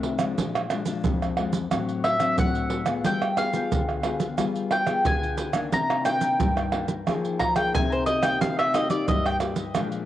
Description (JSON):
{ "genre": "samba and choro", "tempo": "90 BPM", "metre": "4/4", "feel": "straight", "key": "C minor", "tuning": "A4 = 441 Hz", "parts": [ { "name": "nylon-string guitar", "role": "accompaniment", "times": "0.0-10.1 s", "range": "F2 to Ab4", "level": "-28 LUFS", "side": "left 5 dB", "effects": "none" }, { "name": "pandeiro, maracas, tamborim and surdo", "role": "percussion", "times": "0.0-10.1 s", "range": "none", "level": "-26 LUFS", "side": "right 3 dB", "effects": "none" }, { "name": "mandolin", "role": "melody", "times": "2.0-9.4 s", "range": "C5 to Bb5", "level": "-26 LUFS", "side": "equal", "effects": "cassette tape, analog delay" } ], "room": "moderate spring reverb, RT60 1.9 s, studio ambience", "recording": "home recording on cassette", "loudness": "-22 LUFS", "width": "side -12 dB against mid", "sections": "0.0-10.1 A section", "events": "mandolin solo 0.0-10.1", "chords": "0.4 Bb7; 1.7 D7/A; 3.1 G7b9; 5.7 Cm9; 7.1 Fm11; 8.4 Cm7" }